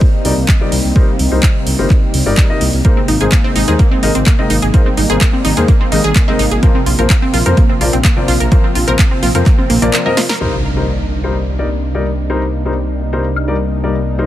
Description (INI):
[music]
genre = progressive house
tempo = 127 BPM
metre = 4/4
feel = straight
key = C minor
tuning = A4 = 440 Hz
[part]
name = lush unison pad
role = sustained chords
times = 0.0-14.3 s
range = C3 to Eb4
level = -21 LUFS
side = equal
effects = chorus, sidechain pumping
[part]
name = electronic kick drum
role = drums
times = 0.0-9.6 s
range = none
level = -11 LUFS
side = equal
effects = overdrive
[part]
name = dark baby grand piano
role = stabs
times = 0.2-14.3 s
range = F3 to Eb5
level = -20 LUFS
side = left 4 dB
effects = vintage 12-bit sampler grit, sidechain pumping, low-pass filter, tape echo
[part]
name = dark detuned saw bass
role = bass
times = 0.2-14.3 s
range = G1 to F2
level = -17 LUFS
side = equal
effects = sidechain pumping
[part]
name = deep house drum kit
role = drums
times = 0.2-10.4, 13.4-13.5 s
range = handclaps, hi-hat, snare drum, woodblock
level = -20 LUFS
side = right 1 dB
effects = overdrive, sidechain pumping on hats, low-pass filter on hats, low-pass filter on snare, sidechain pumping on perc, low-pass filter on perc
[part]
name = wide unison pluck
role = arpeggios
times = 2.8-10.3 s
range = Bb3 to Bb4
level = -18 LUFS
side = right 1 dB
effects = sidechain pumping, tape echo
[part]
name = impact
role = sound effects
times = 10.4-12.3 s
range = none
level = -24 LUFS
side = equal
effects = none
[sound]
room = digital ambience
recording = none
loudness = -11 LUFS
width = side -13 dB against mid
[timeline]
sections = 0.0-10.4 A section; 10.4-14.3 B section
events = filter sweep on analog synth pad 0.0-10.4; break 9.9-10.4; drum fill 10.2; band accent 10.3; impact 10.4-12.3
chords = 0.0 Cm7; 2.8 Abadd9; 6.6 Bbsus2; 10.4 Cm7